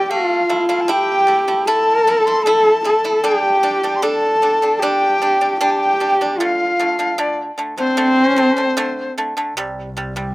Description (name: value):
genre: mongolian traditional, Mongolian folk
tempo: 76 BPM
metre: 4/4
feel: straight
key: unclear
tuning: A4 = 440 Hz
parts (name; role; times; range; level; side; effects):
- warm horsehead fiddle; melody; 0.0-10.3 s; G3 to A4; -16 LUFS; equal; slapback echo
- bright reedy dizi; second line; 0.0-9.1 s; C5 to C6; -20 LUFS; left 2 dB; slapback echo
- pipa; arpeggios; 0.0-10.3 s; C3 to E4; -22 LUFS; right 1 dB; slapback echo
- muted double bass; drone; 9.6-10.3 s; C2; -29 LUFS; equal; none
room: little or no reverb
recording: recorded outdoors, with no room sound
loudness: -14 LUFS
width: side -20 dB against mid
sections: 0.0-9.6 A section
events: none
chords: 0.1 A5; 3.2 G5; 6.4 D5; 9.6 C5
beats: | 0.09 0.88 1.67 2.45 | 3.24 4.03 4.81 5.60 | 6.39 7.18 7.98 8.77 | 9.56